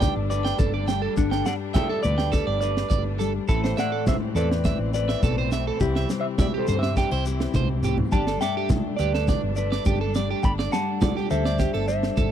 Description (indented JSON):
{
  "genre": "highlife guitar band",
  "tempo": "104 BPM",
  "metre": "4/4",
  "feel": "straight",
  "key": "G major",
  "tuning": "A4 = 440 Hz",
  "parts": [
    { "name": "clean electric guitar", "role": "melody", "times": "0.0-12.3 s", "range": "D4 to B5", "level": "-29 LUFS", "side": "equal", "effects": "phaser, tape echo" },
    { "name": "fingerpicked steel-string acoustic guitar", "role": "accompaniment", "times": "0.0-12.3 s", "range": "G2 to A4", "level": "-31 LUFS", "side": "left 9 dB", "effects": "none" },
    { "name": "bright symphonic string section", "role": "sustained chords", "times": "0.0-12.3 s", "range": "E3 to D4", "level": "-36 LUFS", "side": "left 3 dB", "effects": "none" },
    { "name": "electric guitar at the edge of break-up", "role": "arpeggios", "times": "0.0-12.3 s", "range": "G4 to G5", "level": "-30 LUFS", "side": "right 10 dB", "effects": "tape echo" },
    { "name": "hollow-body short-scale fingered electric bass", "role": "bass", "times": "0.0-12.3 s", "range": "G1 to G2", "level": "-26 LUFS", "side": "equal", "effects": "none" },
    { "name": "tight funk drum kit", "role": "drums", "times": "0.0-12.3 s", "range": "kick drum, snare drum", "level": "-25 LUFS", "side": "right 1 dB", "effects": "none" },
    { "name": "congas", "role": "percussion", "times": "0.0-12.3 s", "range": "none", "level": "-29 LUFS", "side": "right 1 dB", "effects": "none" },
    { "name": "shekere", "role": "percussion", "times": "0.0-12.3 s", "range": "none", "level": "-31 LUFS", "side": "left 2 dB", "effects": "none" }
  ],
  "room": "little or no reverb",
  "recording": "dry, close 1970s-style studio recording",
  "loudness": "-21 LUFS",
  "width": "side -10 dB against mid",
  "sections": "0.0-12.3 A section",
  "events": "drum fill 7.7-8.1",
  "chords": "0.0 Gsus2; 3.5 Am; 5.8 C; 8.1 Gsus2",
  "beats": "0.02 0.60 | 1.18 1.75 2.33 2.91 | 3.49 4.07 4.65 5.23 | 5.81 6.39 6.96 7.54 | 8.12 8.70 9.28 9.86 | 10.44 11.02 11.60 12.17"
}